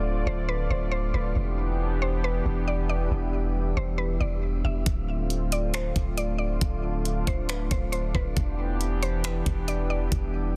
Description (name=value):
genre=hip hop, atmospheric cloud-rap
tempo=137 BPM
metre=4/4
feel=half-time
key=D dorian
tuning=A4 = 440 Hz
part: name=warm analog pad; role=sustained chords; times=0.0-10.6 s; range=D3 to D5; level=-34 LUFS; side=equal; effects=chorus, sidechain pumping
part: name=long sustained 808-style bass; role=bass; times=0.0-10.6 s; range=D1 to E1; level=-30 LUFS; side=equal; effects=none
part: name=wind-like tuned noise texture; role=texture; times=0.0-10.6 s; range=G3 to E5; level=-46 LUFS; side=equal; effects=none
part: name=mallet-like synth pluck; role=melody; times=0.3-10.1 s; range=B4 to E5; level=-37 LUFS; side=equal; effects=chorus, digital delay
part: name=smooth R&B drum kit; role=drums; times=4.9-10.2 s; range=finger snaps, hi-hat, kick drum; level=-31 LUFS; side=equal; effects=soft clipping on snare
room=digital ambience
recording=dense, heavily limited modern master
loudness=-27 LUFS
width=mono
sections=0.0-10.6 A section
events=none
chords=0.0 Dm7; 1.4 Em7; 4.9 Dm7; 8.4 Em7